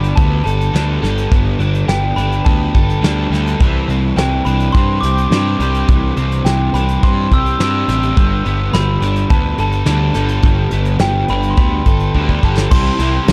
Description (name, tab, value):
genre	indie rock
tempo	105 BPM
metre	4/4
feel	straight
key	C major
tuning	A4 = 440 Hz
part	glockenspiel with soft plastic mallets	melody	0.0-13.3 s	G5 to E6	-24 LUFS	equal	digital delay
part	overdriven electric guitar	riff	0.0-13.3 s	E3 to A4	-24 LUFS	equal	analog chorus, digital delay
part	raw garage guitar	riff	0.0-13.3 s	G2 to E4	-24 LUFS	equal	overdrive
part	fuzz picked electric bass	bass	0.0-13.3 s	G1 to G2	-19 LUFS	equal	overdrive
part	soft brush drum kit	drums	0.0-13.3 s	crash cymbal, hi-hat, kick drum, ride cymbal, snare drum	-17 LUFS	equal	none
room	small room reverb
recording	none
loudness	-15 LUFS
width	mono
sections	0.0-12.7 A section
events	drum fill 12.2-12.7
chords	0.0 Gadd9; 3.6 Cadd9; 8.2 Gadd9; 12.7 C